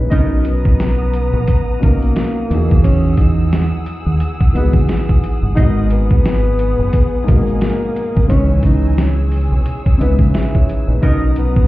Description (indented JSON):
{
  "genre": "hip hop, boom-bap hip-hop",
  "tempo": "88 BPM",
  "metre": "4/4",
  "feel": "swing 57% on 16ths",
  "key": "unclear",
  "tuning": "A4 = 438 Hz",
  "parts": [
    { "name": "dark grand piano", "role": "accompaniment", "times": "0.0-11.7 s", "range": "G#2 to E5", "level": "-22 LUFS", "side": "left 3 dB", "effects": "high-pass filter, low-pass filter" },
    { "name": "deep dub fingered electric bass", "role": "bass", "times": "0.0-11.7 s", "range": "F#1 to E2", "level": "-15 LUFS", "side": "equal", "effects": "none" },
    { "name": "breathy tenor saxophone", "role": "melody", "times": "0.1-11.7 s", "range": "A#3 to D#4", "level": "-21 LUFS", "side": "equal", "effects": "high-pass filter, low-pass filter, digital delay" },
    { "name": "warm studio string section", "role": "sustained chords", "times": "0.1-11.7 s", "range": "G#4 to E6", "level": "-32 LUFS", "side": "right 1 dB", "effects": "high-pass filter, low-pass filter" },
    { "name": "mellow horn section", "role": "stabs", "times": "0.1-0.3, 5.6-5.8, 11.0-11.2 s", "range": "B3 to D#5", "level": "-30 LUFS", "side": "right 2 dB", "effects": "high-pass filter, low-pass filter, digital delay" },
    { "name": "boom bap sampler-style drum kit", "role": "drums", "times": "0.1-11.7 s", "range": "hi-hat, kick drum, snare drum", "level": "-14 LUFS", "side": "equal", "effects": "vintage 12-bit sampler grit" },
    { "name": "tube shaker", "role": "percussion", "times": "0.1-11.6 s", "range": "none", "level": "-55 LUFS", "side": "right 4 dB", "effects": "none" }
  ],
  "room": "little or no reverb",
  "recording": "heard muffled through a wall, club reverb, EQ",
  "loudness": "-12 LUFS",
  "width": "side -17 dB against mid",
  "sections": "0.1-11.7 A section",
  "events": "none",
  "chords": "0.1 Bmaj7; 2.5 Emaj9; 5.6 G#m7; 8.3 C#m7; 11.0 Bmaj7",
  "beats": "| 0.12 0.80 1.48 2.16 | 2.85 3.53 4.21 4.89 | 5.57 6.25 6.94 7.62 | 8.30 8.98 9.66 10.35 | 11.03"
}